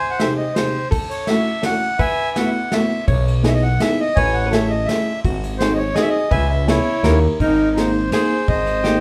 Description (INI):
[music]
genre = musette waltz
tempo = 167 BPM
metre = 3/4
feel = straight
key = unclear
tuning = A4 = 440 Hz
[part]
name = accordion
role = melody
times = 0.0-9.0 s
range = Eb4 to G#5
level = -23 LUFS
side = equal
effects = plate reverb
[part]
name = hollow-body jazz guitar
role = second line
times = 0.0-9.0 s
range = Eb4 to C#5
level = -27 LUFS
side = equal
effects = none
[part]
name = dark upright piano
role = accompaniment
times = 0.2-9.0 s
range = B#2 to G#4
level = -23 LUFS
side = equal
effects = none
[part]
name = soft brush drum kit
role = drums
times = 0.2-8.9 s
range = kick drum, ride cymbal, snare drum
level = -26 LUFS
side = equal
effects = none
[part]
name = growling FM bass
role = bass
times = 3.1-9.0 s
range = G#1 to D#2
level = -22 LUFS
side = equal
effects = none
[sound]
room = moderate studio reverb, RT60 0.6 s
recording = heard from further back in the room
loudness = -18 LUFS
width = mono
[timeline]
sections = 0.0-7.4 A section; 7.4-9.0 B section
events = none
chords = 0.0 G#/B#; 0.9 A6; 2.0 B7sus4; 3.1 Emaj7/B; 4.2 Amaj7; 5.2 G#7; 6.3 C#m7; 7.0 D#7; 7.4 Abadd9